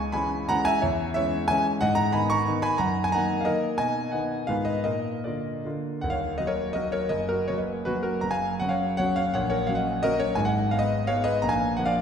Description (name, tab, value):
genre	classical, romantic triple-time dance for piano with dotted rhythms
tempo	141-193 BPM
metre	3/4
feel	rubato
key	Eb minor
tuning	A4 = 440 Hz
part	clear concert grand piano	solo	0.0-12.0 s	Eb1 to C#6	-23 LUFS	equal	none
room	wet scoring stage reverb, RT60 1.9 s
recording	heard from further back in the room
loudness	-23 LUFS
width	side -7 dB against mid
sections	0.0-6.0 A section; 6.0-12.0 B section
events	none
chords	0.0 C#m; 0.8 C#m/E; 1.8 Abm7; 2.8 Ebm/Gb; 3.8 B; 4.5 Fm7b5/Ab; 4.9 Bb; 6.0 Ebm; 7.1 Gbadd11; 8.2 Gb5; 9.3 Gb/Bb; 10.4 Abm; 11.4 Bb